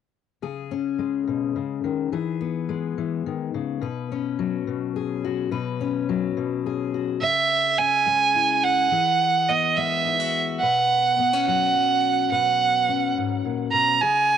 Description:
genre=folk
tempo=71 BPM (dotted quarters)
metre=6/8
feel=straight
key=unclear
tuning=A4 = 440 Hz
part: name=fingerpicked steel-string acoustic guitar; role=accompaniment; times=0.4-14.4 s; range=G#2 to B4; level=-26 LUFS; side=left 9 dB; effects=cassette tape
part: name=warm fiddle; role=melody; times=7.2-14.4 s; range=D#5 to A#5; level=-19 LUFS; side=right 5 dB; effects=analog delay
room=light reverb, studio ambience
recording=home recording on cassette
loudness=-20 LUFS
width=side -8 dB against mid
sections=0.4-7.2 A section; 7.2-14.4 B section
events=none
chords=0.4 C#5; 2.1 E; 3.8 Bsus2; 7.2 C#m; 8.9 Eadd9; 10.6 Bsus2

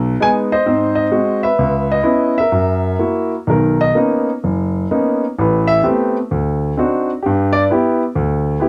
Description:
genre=solo jazz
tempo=129 BPM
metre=4/4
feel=swing 66% on 8ths, rubato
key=unclear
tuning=A4 = 438 Hz
part: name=warm concert grand piano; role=solo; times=0.0-8.7 s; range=F#1 to G#5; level=-16 LUFS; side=equal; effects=none
room=light reverb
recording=close, detailed microphones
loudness=-16 LUFS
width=mono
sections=0.0-3.5 A section; 3.5-8.7 B section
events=grand piano solo 3.5-8.7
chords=0.0 B6; 0.7 G#7; 1.6 C#m7; 2.5 F#7; 3.5 Bmaj9; 5.4 Am9; 6.3 D7b9; 7.2 G6

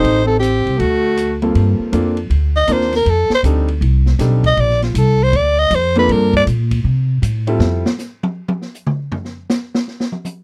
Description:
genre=jazz, small-group swing and bop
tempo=159 BPM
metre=4/4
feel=swing 65% on 8ths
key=unclear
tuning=A4 = 438 Hz
part: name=growling soprano saxophone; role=melody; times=0.0-6.4 s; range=F4 to Eb5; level=-18 LUFS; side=equal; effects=none
part: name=breathy alto saxophone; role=second line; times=0.0-1.4 s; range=A3 to Eb4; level=-21 LUFS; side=equal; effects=none
part: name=clear upright piano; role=accompaniment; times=0.0-7.9 s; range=G2 to Bb4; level=-21 LUFS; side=equal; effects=none
part: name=upright bass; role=bass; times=0.0-7.8 s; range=A1 to C3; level=-18 LUFS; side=equal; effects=none
part: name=open jazz drum kit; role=drums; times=0.0-10.4 s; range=hi-hat, kick drum, ride cymbal, rim click, snare drum, toms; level=-25 LUFS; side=equal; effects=none
room=light reverb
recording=dry, close 1970s-style studio recording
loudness=-16 LUFS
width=mono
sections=0.0-1.5 A section; 1.5-10.4 B section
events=soprano saxophone solo 1.5-10.4; drum solo 7.6-10.4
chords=0.0 Am7b5; 0.8 D7; 1.5 Gm11; 3.1 F13; 4.6 Bb; 6.1 Gm11; 6.8 C6; 7.6 Fmaj7; 9.1 N.C.

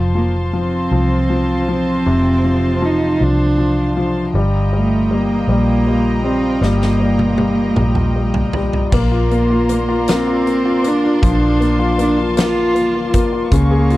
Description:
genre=six-eight pop ballad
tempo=52 BPM (dotted quarters)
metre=6/8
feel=straight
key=Bb major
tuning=A4 = 444 Hz
part: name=clear baby grand piano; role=accompaniment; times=0.0-14.0 s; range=C3 to Ab4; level=-19 LUFS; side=left 3 dB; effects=none
part: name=warm studio string section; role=sustained chords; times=0.0-14.0 s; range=F4 to Db6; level=-25 LUFS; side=right 1 dB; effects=none
part: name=vintage muted fingered electric bass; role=bass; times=0.0-14.0 s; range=F1 to Db2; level=-18 LUFS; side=equal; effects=none
part: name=warm cello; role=melody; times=0.2-14.0 s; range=A3 to F4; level=-18 LUFS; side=right 2 dB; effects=none
part: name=huge arena drum kit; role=drums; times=6.6-14.0 s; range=crash cymbal, hi-hat, kick drum, snare drum, toms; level=-20 LUFS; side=equal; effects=none
room=little or no reverb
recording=dry, close 1970s-style studio recording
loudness=-13 LUFS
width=side -17 dB against mid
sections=0.0-8.9 A section; 8.9-14.0 B section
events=drum fill 6.6-8.9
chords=0.0 F; 4.3 Ebadd9/G; 8.9 Bbadd9

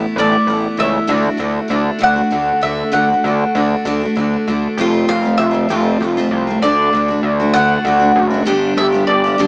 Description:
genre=folk rock and heartland rock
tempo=65 BPM (dotted quarters)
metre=6/8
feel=straight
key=unclear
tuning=A4 = 439 Hz
part: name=mandolin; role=melody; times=0.0-9.5 s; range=D5 to F#5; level=-19 LUFS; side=equal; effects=none
part: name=picked steel-string acoustic guitar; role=accompaniment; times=0.0-9.5 s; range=F2 to G4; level=-20 LUFS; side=equal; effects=none
part: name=gritty driven synth bass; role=bass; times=0.0-9.5 s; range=F1 to D2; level=-21 LUFS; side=equal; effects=none
room=light reverb, small room reverb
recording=small speaker sound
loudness=-16 LUFS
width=mono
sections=0.0-4.8 A section; 4.8-9.5 B section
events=none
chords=0.0 Asus2; 1.1 D; 4.8 F; 6.6 D; 8.5 G

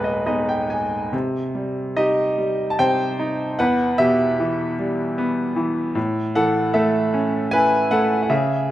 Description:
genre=classical, lyrical solo piano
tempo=75 BPM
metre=3/4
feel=rubato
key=unclear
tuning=A4 = 439 Hz
part: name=bright baby grand piano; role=solo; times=0.0-8.7 s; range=D#1 to A5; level=-18 LUFS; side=equal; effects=none
room=moderate scoring stage reverb, RT60 1.8 s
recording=none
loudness=-18 LUFS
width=side -13 dB against mid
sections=0.0-1.1 A section; 1.1-8.7 B section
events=grand piano fill 0.0-1.1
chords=0.0 G#m; 1.1 Cm; 3.6 Em; 6.0 Aadd9

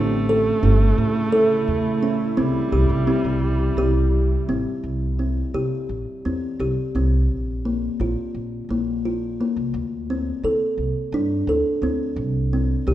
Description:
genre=contemporary instrumental, chamber music in an uneven meter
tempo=172 BPM (eighths)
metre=7/8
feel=straight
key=unclear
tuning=A4 = 440 Hz
part: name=dark viola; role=second line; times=0.0-4.5 s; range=G3 to A3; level=-25 LUFS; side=right 1 dB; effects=none
part: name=deep dark ambient pad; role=sustained chords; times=0.0-4.8 s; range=C3 to E4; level=-27 LUFS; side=right 2 dB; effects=chorus, built-in reverb
part: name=kalimba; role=arpeggios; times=0.0-12.9 s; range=Bb3 to A4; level=-23 LUFS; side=equal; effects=none
part: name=upright bass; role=bass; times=0.0-12.9 s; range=G1 to D3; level=-22 LUFS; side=right 1 dB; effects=none
room=light reverb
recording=minimal, uncompressed stereo recording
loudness=-19 LUFS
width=side -13 dB against mid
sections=0.0-4.8 A section; 4.8-12.9 B section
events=none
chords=0.0 A; 2.4 C; 4.8 C5; 7.3 Bb5; 9.7 D5; 12.2 C5

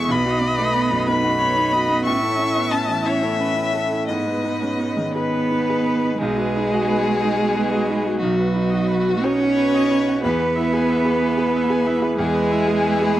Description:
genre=neoclassical piano and strings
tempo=56-62 BPM (dotted quarters)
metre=6/8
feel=rubato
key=unclear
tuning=A4 = 440 Hz
part: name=warm violin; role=melody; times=0.0-13.2 s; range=F#4 to C#6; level=-23 LUFS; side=left 4 dB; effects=none
part: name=rich cello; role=second line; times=0.0-13.2 s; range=F#3 to E4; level=-22 LUFS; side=right 3 dB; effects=none
part: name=bright concert grand piano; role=accompaniment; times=0.0-13.2 s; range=B1 to B4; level=-23 LUFS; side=right 1 dB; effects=none
part: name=warm viola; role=accompaniment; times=0.0-13.2 s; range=D#4 to G#5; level=-29 LUFS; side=right 2 dB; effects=none
part: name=chorused pulse-width pad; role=sustained chords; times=0.0-13.2 s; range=A3 to E5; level=-30 LUFS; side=left 1 dB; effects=none
room=light reverb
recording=dry, close 1970s-style studio recording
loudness=-17 LUFS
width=side -13 dB against mid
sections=0.0-6.2 A section; 6.2-13.2 B section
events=none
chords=0.1 B; 2.1 A; 4.1 G#m; 6.2 B; 10.2 E

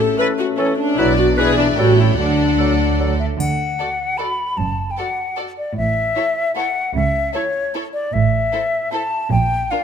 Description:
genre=cinematic, playful, whimsical film cue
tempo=152 BPM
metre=3/4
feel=straight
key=D major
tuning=A4 = 441 Hz
part: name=rich studio viola section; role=accompaniment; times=0.0-9.8 s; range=C#4 to B4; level=-20 LUFS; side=left 1 dB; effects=none
part: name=dark French horn section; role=sustained chords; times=0.0-3.2 s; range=E3 to D4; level=-22 LUFS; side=left 6 dB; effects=none
part: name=dark studio double bass section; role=bass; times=0.0-9.6 s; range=F#1 to D2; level=-21 LUFS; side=right 5 dB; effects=none
part: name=warm studio cello section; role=bass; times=0.0-9.6 s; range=F#2 to D3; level=-24 LUFS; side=right 3 dB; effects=none
part: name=dark studio violin section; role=melody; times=0.2-9.8 s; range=Bb4 to G5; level=-30 LUFS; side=left 4 dB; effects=none
part: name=bright clarinet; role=second line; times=0.2-3.1 s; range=A4 to B4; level=-26 LUFS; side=left 3 dB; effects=none
part: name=clear studio violin section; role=second line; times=0.2-9.8 s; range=F4 to D5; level=-28 LUFS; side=left 3 dB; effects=none
part: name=hollow concert flute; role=second line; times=0.2-9.8 s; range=C#5 to B5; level=-21 LUFS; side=left 2 dB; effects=none
part: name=mellow bassoon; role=accompaniment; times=0.2-3.1 s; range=E3 to G3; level=-27 LUFS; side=right 4 dB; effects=none
part: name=triangle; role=percussion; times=3.4-4.2 s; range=none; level=-35 LUFS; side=left 3 dB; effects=none
room=moderate concert hall reverb, RT60 1.9 s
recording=none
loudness=-16 LUFS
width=side -7 dB against mid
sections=0.0-3.4 A section; 3.4-9.8 B section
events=none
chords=0.0 A; 1.0 Bm; 1.4 E7/B; 1.8 A7; 2.2 D; 4.6 D/F#; 5.8 A5; 7.0 A/C# (rootless); 8.1 A5; 9.3 Bb

